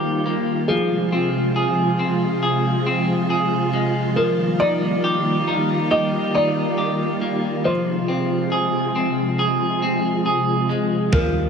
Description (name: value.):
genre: dream pop.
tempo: 69 BPM.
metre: 4/4.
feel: straight.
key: unclear.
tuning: A4 = 440 Hz.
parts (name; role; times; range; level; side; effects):
felt-muted upright piano; melody; 0.0-11.5 s; Ab4 to Eb5; -25 LUFS; equal; ping-pong delay.
soft string machine; sustained chords; 0.0-11.5 s; C3 to F4; -22 LUFS; right 1 dB; ensemble chorus.
clean electric guitar; arpeggios; 0.0-11.5 s; F3 to Ab4; -22 LUFS; left 1 dB; lush chorus, ping-pong delay.
vintage muted fingered electric bass; bass; 11.1-11.5 s; Eb2; -24 LUFS; equal; none.
gated 80s digital drum machine; drums; 11.1-11.3 s; kick drum, toms; -20 LUFS; right 1 dB; gated reverb.
room: moderate huge ambient reverb, RT60 4.3 s.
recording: none.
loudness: -18 LUFS.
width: side -6 dB against mid.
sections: 0.0-11.5 A section.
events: none.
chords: 0.0 Ebadd9; 0.7 Fm; 4.2 Ebadd9; 7.7 Fm.